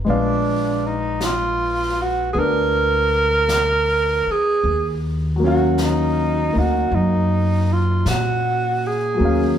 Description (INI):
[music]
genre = jazz ballad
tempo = 52 BPM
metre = 4/4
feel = swing 68% on 8ths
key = Eb minor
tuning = A4 = 438 Hz
[part]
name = warm grand piano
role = accompaniment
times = 0.0-9.6 s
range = Gb3 to F5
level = -23 LUFS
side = left 2 dB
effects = none
[part]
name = upright bass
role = bass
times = 0.0-9.6 s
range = Bb1 to Bb2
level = -22 LUFS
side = equal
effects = none
[part]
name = breathy tenor saxophone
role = melody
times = 0.1-9.6 s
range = D4 to Bb4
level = -20 LUFS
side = right 2 dB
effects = none
[part]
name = jazz brush drum kit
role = drums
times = 0.1-9.6 s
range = brushed snare drum, hi-hat, snare drum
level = -32 LUFS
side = left 1 dB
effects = none
[sound]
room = moderate large studio reverb, RT60 1.1 s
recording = band playing live in one room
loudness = -17 LUFS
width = side -9 dB against mid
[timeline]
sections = 0.0-9.6 A section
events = none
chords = 0.1 Bb7b9; 4.6 Ebm9